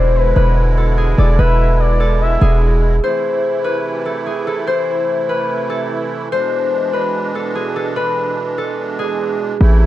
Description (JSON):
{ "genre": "hip hop", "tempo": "146 BPM", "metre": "4/4", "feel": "half-time", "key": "A harmonic minor", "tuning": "A4 = 440 Hz", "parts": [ { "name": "concert harp", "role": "melody", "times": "0.0-9.9 s", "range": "G#4 to C5", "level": "-18 LUFS", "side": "left 1 dB", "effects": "low-pass filter" }, { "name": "gliding portamento lead", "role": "second line", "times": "0.0-2.6 s", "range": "B4 to E5", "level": "-23 LUFS", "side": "left 1 dB", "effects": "chorus, digital delay" }, { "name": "musette accordion", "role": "sustained chords", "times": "0.0-9.9 s", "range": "B2 to E4", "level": "-23 LUFS", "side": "right 3 dB", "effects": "none" }, { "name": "hard-hitting 808-style bass", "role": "bass", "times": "0.0-3.0, 9.6-9.9 s", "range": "E1 to A1", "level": "-12 LUFS", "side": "equal", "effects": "none" } ], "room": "small room ambience", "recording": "dark, warm production", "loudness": "-14 LUFS", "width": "side -14 dB against mid", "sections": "0.0-3.0 A section; 3.0-9.6 B section", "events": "none", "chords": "0.0 E7; 3.0 Am; 6.3 E7" }